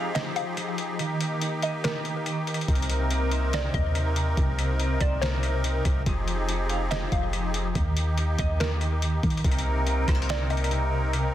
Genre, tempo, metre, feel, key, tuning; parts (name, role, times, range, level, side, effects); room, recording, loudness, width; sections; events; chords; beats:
hip hop, atmospheric cloud-rap; 142 BPM; 4/4; half-time; C minor; A4 = 444 Hz
musette accordion; sustained chords; 0.0-11.3 s; C3 to Bb4; -31 LUFS; equal; sidechain pumping
semi-hollow electric guitar; arpeggios; 0.0-11.3 s; C3 to F5; -33 LUFS; equal; tremolo, ping-pong delay
hollow square pluck; melody; 0.1-11.1 s; Bb4 to F5; -34 LUFS; equal; chorus, ping-pong delay
trip hop sampler-style drum kit; drums; 0.2-11.2 s; hi-hat, kick drum, rim click, snare drum; -29 LUFS; equal; overdrive
soft 808-style bass; bass; 2.7-11.3 s; F1 to Eb3; -26 LUFS; equal
little or no reverb; dense, heavily limited modern master; -24 LUFS; side -12 dB against mid
0.0-9.4 A section; 9.4-11.3 B section
break 0.0-2.7; kick muted 1.0-2.7
0.0 Fm7; 1.0 Eb; 2.7 Cm7; 6.1 Fm7; 7.8 Eb; 9.4 Cm7
0.15 0.57 | 0.99 1.42 1.84 2.26 | 2.68 3.11 3.53 3.95 | 4.37 4.80 5.22 5.64 | 6.06 6.49 6.91 7.33 | 7.75 8.18 8.60 9.02 | 9.44 9.87 10.29 10.71 | 11.13